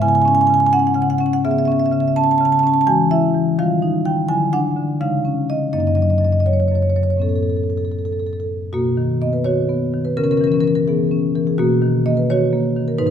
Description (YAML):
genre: classical, contemporary piece for solo marimba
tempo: 84 BPM (dotted quarters)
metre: 6/8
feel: rubato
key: B major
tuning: A4 = 440 Hz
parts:
  - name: marimba with medium mallets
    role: solo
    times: 0.0-13.1 s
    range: F#2 to A5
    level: -15 LUFS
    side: equal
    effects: none
room: moderate recital hall reverb, RT60 1.5 s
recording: minimal, uncompressed stereo recording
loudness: -15 LUFS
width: side -8 dB against mid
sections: 0.0-8.7 A section; 8.7-13.1 B section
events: none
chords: 0.0 C#m7; 1.4 Amaj9/C#; 2.9 Eadd9; 3.6 D#add9; 4.3 Dadd9; 5.0 C#add9; 5.7 F#6; 7.2 Aadd9; 8.7 Bmaj9; 10.2 C#m7; 11.6 Bmaj9